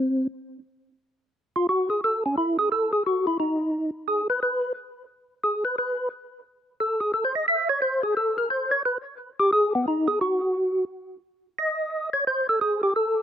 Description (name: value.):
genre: jazz.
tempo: 176 BPM.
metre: 4/4.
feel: swing 65% on 8ths.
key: unclear.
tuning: A4 = 442 Hz.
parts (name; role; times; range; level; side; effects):
percussive tonewheel organ; solo; 0.0-13.2 s; B3 to E5; -22 LUFS; equal; chorus vibrato, slow rotary speaker, slapback echo.
room: little or no reverb.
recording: recorded outdoors, with no room sound.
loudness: -22 LUFS.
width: side -9 dB against mid.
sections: 0.6-13.2 A section.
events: tonewheel organ solo 0.6-13.2.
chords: none.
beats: 0.30 | 0.64 0.98 1.32 1.66 | 2.00 2.34 2.68 3.02 | 3.37 3.71 4.05 4.39 | 4.73 5.07 5.41 5.75 | 6.09 6.44 6.78 7.12 | 7.46 7.80 8.14 8.48 | 8.83 9.17 9.51 9.85 | 10.19 10.54 10.88 11.22 | 11.56 11.90 12.24 12.58 | 12.93.